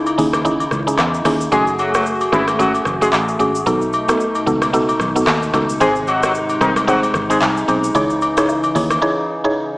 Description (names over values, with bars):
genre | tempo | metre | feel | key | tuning
afrobeats | 112 BPM | 4/4 | swing 58% on 16ths | C# minor | A4 = 444 Hz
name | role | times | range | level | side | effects
hollow soft pad | sustained chords | 0.0-9.8 s | B2 to G#4 | -22 LUFS | equal | chorus
fingered electric bass | bass | 0.0-9.0 s | F#1 to E2 | -25 LUFS | equal | none
booming analog drum machine | drums | 0.1-9.0 s | handclaps, hi-hat, kick drum, rim click, shaker | -22 LUFS | equal | none
agogo bells and woodblock | percussion | 0.1-9.0 s | none | -22 LUFS | left 1 dB | none
mallet-like synth pluck | accompaniment | 0.2-9.6 s | A3 to C#5 | -19 LUFS | right 1 dB | chorus
clear horn section | second line | 1.5-7.4 s | D#3 to G#4 | -19 LUFS | left 1 dB | none
room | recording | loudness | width
wet plate reverb, RT60 1.6 s | dreamy mix soaked in reverb, vinyl crackle, small speaker sound | -14 LUFS | side -22 dB against mid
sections
0.0-9.8 A section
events
break 9.0-9.8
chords
0.0 C#madd9; 1.5 F#madd9; 3.7 B7; 5.8 G#; 8.0 C#madd9